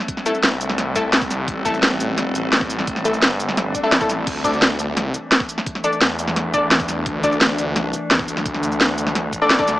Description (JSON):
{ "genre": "dark technical drum and bass", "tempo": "172 BPM", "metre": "4/4", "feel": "straight", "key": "unclear", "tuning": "A4 = 440 Hz", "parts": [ { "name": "metallic inharmonic drone", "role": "sustained chords", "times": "0.0-9.8 s", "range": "E3 to D4", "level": "-26 LUFS", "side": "left 1 dB", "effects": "chorus, built-in reverb, sidechain pumping" }, { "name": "drum and bass drum kit", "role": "drums", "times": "0.0-9.7 s", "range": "crash cymbal, hi-hat, shaker, snare drum", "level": "-18 LUFS", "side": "equal", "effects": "none" }, { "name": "electronic kick drum", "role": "drums", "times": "0.1-9.7 s", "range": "none", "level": "-30 LUFS", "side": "equal", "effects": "none" }, { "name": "orchestra-hit-like synth stab", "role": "stabs", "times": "0.3-9.8 s", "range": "A3 to D5", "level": "-22 LUFS", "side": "left 1 dB", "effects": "built-in reverb, dub echo" }, { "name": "snarling distorted saw bass", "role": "bass", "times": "0.4-9.8 s", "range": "G1 to E2", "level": "-24 LUFS", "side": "equal", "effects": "distortion, tube saturation, sidechain pumping" }, { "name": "swell", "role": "sound effects", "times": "3.7-4.3 s", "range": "none", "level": "-30 LUFS", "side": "left 1 dB", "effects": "none" } ], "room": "light reverb, digital ambience", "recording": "small speaker sound", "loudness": "-17 LUFS", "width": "side -16 dB against mid", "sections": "0.0-9.8 A section", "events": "swell 3.7-4.3", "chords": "0.0 Am7; 4.3 Dsus2" }